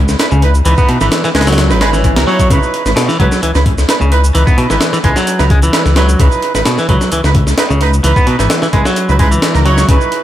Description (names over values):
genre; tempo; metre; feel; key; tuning
breakbeat, breaks; 130 BPM; 4/4; swing 53% on 16ths; C# minor; A4 = 441 Hz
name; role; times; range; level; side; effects
dark detuned saw bass; bass; 0.0-10.0 s; G#1 to C#2; -12 LUFS; equal; none
breakbeat sampler-style drum kit; drums; 0.1-10.2 s; hi-hat, kick drum, snare drum; -14 LUFS; equal; dub echo
shaker; drums; 0.1-10.1 s; none; -28 LUFS; right 1 dB; dub echo
clear horn section; stabs; 0.2-10.2 s; D#4 to C#5; -17 LUFS; right 4 dB; dub echo
clean electric guitar; riff; 0.3-10.0 s; B2 to B3; -15 LUFS; equal; tube saturation, vintage 12-bit sampler grit, dub echo
swell; sound effects; 1.8-2.5 s; none; -24 LUFS; equal; none
room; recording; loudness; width
light reverb; echo-heavy mix; -9 LUFS; side -12 dB against mid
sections
0.0-10.2 A section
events
swell 1.8-2.5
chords
0.0 C#m9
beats
0.20 | 0.66 1.12 1.58 2.04 | 2.50 2.96 3.43 3.89 | 4.35 4.81 5.27 5.74 | 6.20 6.66 7.12 7.58 | 8.04 8.50 8.96 9.43 | 9.89